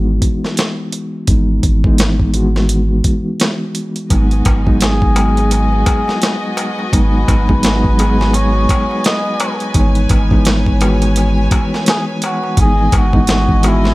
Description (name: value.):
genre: trip hop.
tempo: 85 BPM.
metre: 4/4.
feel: swing 60% on 16ths.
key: G# minor.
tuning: A4 = 440 Hz.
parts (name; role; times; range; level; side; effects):
mellow reed electric piano; accompaniment; 0.0-13.9 s; E3 to G#4; -18 LUFS; equal; fast tremolo, vintage 12-bit sampler grit, low-pass filter, tape echo.
soft dub sub bass; bass; 0.0-13.9 s; G#1; -15 LUFS; equal; none.
dusty soul sampler-style drum kit; drums; 0.2-13.9 s; hi-hat, kick drum, snare drum; -15 LUFS; equal; overdrive.
clear chamber violin section; sustained chords; 4.1-13.9 s; F#4 to G#5; -24 LUFS; left 1 dB; none.
darbuka; percussion; 4.1-13.9 s; none; -27 LUFS; left 2 dB; none.
trumpet with cup mute; melody; 4.8-13.9 s; E4 to D#5; -21 LUFS; left 1 dB; tape echo.
room: small room reverb.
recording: none.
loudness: -12 LUFS.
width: side -19 dB against mid.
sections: 0.0-13.9 A section.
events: filter sweep on reed electric piano 0.0-13.9.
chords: 0.0 Emaj9/G#; 4.1 G#m7; 9.8 C#m7/G#.